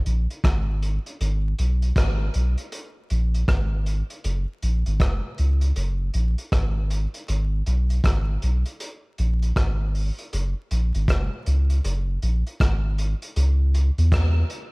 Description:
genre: roots reggae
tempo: 79 BPM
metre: 4/4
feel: swing 62% on 16ths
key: G# minor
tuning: A4 = 436 Hz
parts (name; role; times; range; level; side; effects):
- soft dub sub bass; bass; 0.1-14.4 s; F#1 to E2; -21 LUFS; equal; none
- crunchy breakbeat drum kit; drums; 0.1-14.7 s; hi-hat, kick drum, rim click; -26 LUFS; equal; none
room: little or no reverb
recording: vinyl crackle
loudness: -21 LUFS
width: side -29 dB against mid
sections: 0.0-13.4 A section; 13.4-14.7 B section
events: none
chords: none

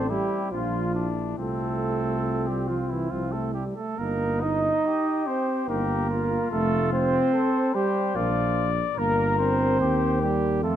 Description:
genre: classical, brass quintet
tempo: 71 BPM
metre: 3/4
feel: uneven beats, rubato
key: F major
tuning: A4 = 440 Hz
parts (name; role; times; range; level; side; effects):
- mellow trumpet; melody; 0.0-10.8 s; C4 to D5; -30 LUFS; left 9 dB; none
- warm trumpet; second line; 0.0-10.8 s; E4 to Eb5; -31 LUFS; right 5 dB; none
- dark French horn; accompaniment; 0.0-10.8 s; D4 to Bb4; -34 LUFS; left 5 dB; none
- warm trombone; accompaniment; 0.0-10.8 s; E3 to Eb4; -26 LUFS; right 1 dB; none
- mellow tuba; bass; 0.0-10.8 s; F1 to F2; -28 LUFS; right 2 dB; none
room: moderate scoring stage reverb, RT60 1.8 s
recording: close, detailed microphones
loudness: -22 LUFS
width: side -10 dB against mid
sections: 0.0-10.8 A section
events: none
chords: 0.0 F (rootless); 0.5 Bb; 1.4 F/C; 4.0 Eb/G; 6.5 F; 8.2 Bb; 9.0 Gm; 9.8 Cm7/Eb

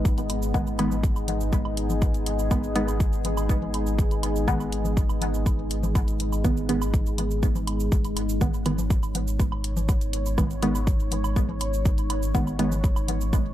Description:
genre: dub techno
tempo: 122 BPM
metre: 4/4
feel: straight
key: G# minor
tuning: A4 = 440 Hz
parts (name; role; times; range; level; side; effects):
- deep dark ambient pad; sustained chords; 0.0-13.5 s; G#3 to C#5; -30 LUFS; left 1 dB; chorus, built-in reverb, sidechain pumping
- soft dub sub bass; bass; 0.0-13.5 s; G#1; -28 LUFS; equal; sidechain pumping
- electronic cabasa and hi-hat; drums; 0.1-13.4 s; none; -36 LUFS; right 1 dB; none
- electronic kick drum; drums; 0.1-13.4 s; none; -24 LUFS; equal; none
- woodblock and congas; percussion; 0.3-13.4 s; none; -36 LUFS; right 1 dB; sidechain pumping on perc, dub echo
- filtered dub chord stab; stabs; 0.5-12.7 s; D#3 to B3; -29 LUFS; equal; chorus, phaser, cassette tape, sidechain pumping, dub echo
room: light reverb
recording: echo-heavy mix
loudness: -22 LUFS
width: side -13 dB against mid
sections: 0.0-13.5 A section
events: filter sweep on synth stab 0.0-13.5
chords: 0.0 G#m

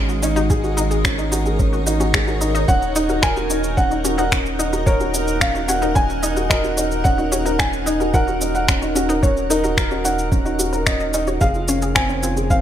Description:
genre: piano and strings electronica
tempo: 110 BPM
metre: 4/4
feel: straight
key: Eb minor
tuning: A4 = 439 Hz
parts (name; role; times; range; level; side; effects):
- granular cloud pad; sustained chords; 0.0-12.6 s; Ab3 to Gb5; -27 LUFS; left 1 dB; built-in reverb
- dark upright piano; riff; 0.0-12.6 s; C4 to Bb4; -23 LUFS; right 2 dB; tape echo
- round analog bass; bass; 0.0-12.6 s; Eb1 to Ab1; -24 LUFS; equal; sidechain pumping
- analog pluck; arpeggios; 0.1-12.3 s; C4 to Db5; -27 LUFS; left 4 dB; chorus, sidechain pumping, tape echo
- electronic shaker and finger snaps; drums; 0.1-12.6 s; none; -22 LUFS; left 1 dB; none
- electronic kick drum; drums; 0.5-12.6 s; none; -19 LUFS; equal; none
- felt-muted upright piano; melody; 2.7-12.6 s; Bb4 to Ab5; -24 LUFS; equal; tape echo
room: light reverb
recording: none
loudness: -16 LUFS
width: side -10 dB against mid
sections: 0.0-12.6 A section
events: none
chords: 0.0 Ab7sus4; 2.7 Ebm7; 11.4 Dbmaj7/F

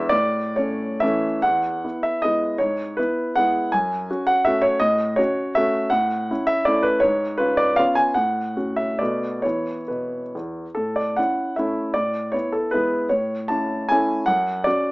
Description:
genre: classical, romantic triple-time dance for piano with dotted rhythms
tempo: 127-174 BPM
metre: 3/4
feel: rubato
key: E major, A major from 5.9 s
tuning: A4 = 440 Hz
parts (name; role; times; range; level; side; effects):
- warm baby grand piano; solo; 0.0-14.9 s; E2 to A5; -19 LUFS; equal; none
room: light reverb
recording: small speaker sound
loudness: -19 LUFS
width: side -23 dB against mid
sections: 0.0-1.4 A section; 1.4-10.8 B section; 10.8-14.9 A section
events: none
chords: 0.1 A; 1.4 E; 2.6 E/G#; 3.7 F#m; 4.8 F#m/A; 5.9 A; 7.0 C#7/G#; 8.2 F#m/A; 9.0 Bm7; 9.4 E5; 10.8 A; 12.0 E7/A; 13.1 A; 14.3 F#5

